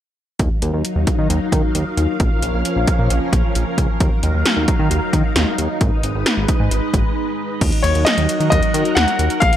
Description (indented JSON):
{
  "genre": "synth-pop",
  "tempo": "133 BPM",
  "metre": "4/4",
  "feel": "straight",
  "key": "Eb minor",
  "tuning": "A4 = 439 Hz",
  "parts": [
    { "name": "string machine, full ensemble", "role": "sustained chords", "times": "0.6-9.6 s", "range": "Db3 to F5", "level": "-22 LUFS", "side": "equal", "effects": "phaser, ensemble chorus" },
    { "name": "chorused synth bass", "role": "bass", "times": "0.4-9.5 s", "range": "Ab1 to Eb3", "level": "-19 LUFS", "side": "equal", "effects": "none" },
    { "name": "80s electronic pad drums", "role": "drums", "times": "0.4-9.6 s", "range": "crash cymbal, hi-hat, kick drum, snare drum", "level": "-18 LUFS", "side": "equal", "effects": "none" },
    { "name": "clear baby grand piano", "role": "melody", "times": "7.8-9.6 s", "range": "Db5 to Gb5", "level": "-18 LUFS", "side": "left 3 dB", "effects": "none" }
  ],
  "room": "digital ambience",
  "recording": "dry, gritty hardware recording",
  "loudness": "-15 LUFS",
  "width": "side -11 dB against mid",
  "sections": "0.4-7.6 A section; 7.6-9.6 B section",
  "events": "break 7.2-7.6",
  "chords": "0.4 Ebmadd9; 2.2 Bbm; 4.0 Ebmadd9; 5.8 Abm; 7.6 Ebm"
}